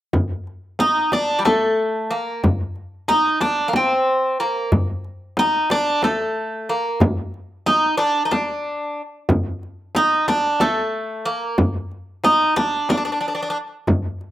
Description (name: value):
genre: Turkish makam ensemble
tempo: 184 BPM (eighths)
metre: 7/8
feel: straight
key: unclear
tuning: A4 = 440 Hz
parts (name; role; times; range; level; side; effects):
- darbuka; percussion; 0.1-14.3 s; none; -25 LUFS; left 1 dB; none
- frame drum; percussion; 0.1-14.0 s; none; -21 LUFS; equal; slapback echo
- Greek bouzouki; melody; 0.8-13.6 s; G3 to Eb4; -18 LUFS; equal; slapback echo
room: light reverb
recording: recorded outdoors, with no room sound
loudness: -18 LUFS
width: side -13 dB against mid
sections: 0.1-14.3 A section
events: none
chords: none